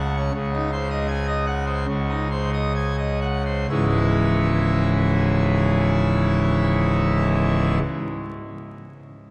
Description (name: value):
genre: classical, organ toccata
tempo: 61-85 BPM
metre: 4/4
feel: straight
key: C# minor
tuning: A4 = 439 Hz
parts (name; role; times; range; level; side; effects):
- pipe organ, full organ; solo; 0.0-7.8 s; C#1 to G#5; -22 LUFS; equal; none
room: wet cathedral reverb, RT60 4.1 s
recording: dark, warm production, vinyl crackle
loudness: -22 LUFS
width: mono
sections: 0.0-3.7 A section; 3.7-7.6 B section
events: slowing down 0.0-3.7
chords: 0.3 G#7/C#; 3.7 C#m